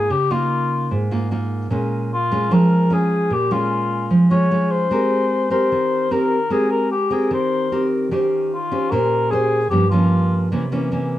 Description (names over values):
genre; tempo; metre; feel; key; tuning
bossa nova; 150 BPM; 4/4; straight; unclear; A4 = 440 Hz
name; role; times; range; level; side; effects
dark cor anglais; melody; 0.0-10.5 s; F4 to Db5; -20 LUFS; left 3 dB; plate reverb
nylon-string guitar; accompaniment; 0.0-11.2 s; G2 to C5; -18 LUFS; right 1 dB; none
room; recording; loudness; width
moderate large studio reverb, RT60 0.9 s; dark, warm production; -16 LUFS; side -13 dB against mid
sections
0.0-11.2 A section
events
none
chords
0.0 Db69; 1.7 Bbm7; 4.9 Abmaj9; 8.1 Eb13; 9.7 Gm7b5; 10.5 C7b9